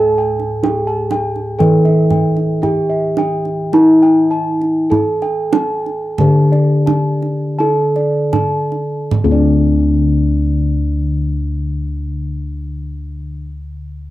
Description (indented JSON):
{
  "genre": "Javanese gamelan",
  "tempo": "37-67 BPM",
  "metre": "4/4",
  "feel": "straight",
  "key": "unclear",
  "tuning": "A4 = 441 Hz",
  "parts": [
    { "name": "gamelan-type bronze metallophone", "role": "melody", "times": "0.0-13.4 s", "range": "D4 to A4-40c", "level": "-18 LUFS", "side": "right 2 dB", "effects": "cassette tape" },
    { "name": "gamelan-type bossed gongs", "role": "arpeggios", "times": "0.0-13.4 s", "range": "D5 to A5-40c", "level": "-23 LUFS", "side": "left 1 dB", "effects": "cassette tape" },
    { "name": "gamelan-type bossed gongs", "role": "bass", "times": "0.0-13.3 s", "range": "D2 to A4-40c", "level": "-15 LUFS", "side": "left 1 dB", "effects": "none" },
    { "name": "kendang", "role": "percussion", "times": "0.4-9.9 s", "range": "none", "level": "-19 LUFS", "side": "right 5 dB", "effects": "none" }
  ],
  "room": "small room ambience",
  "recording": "home recording on cassette",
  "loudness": "-13 LUFS",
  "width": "side -15 dB against mid",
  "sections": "0.0-9.1 A section; 9.1-14.1 B section",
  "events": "slowing down 0.0-9.1",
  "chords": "none",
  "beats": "0.64 1.61 2.64 | 3.73 4.92 6.20 7.59 | 9.12 10.72 12.33"
}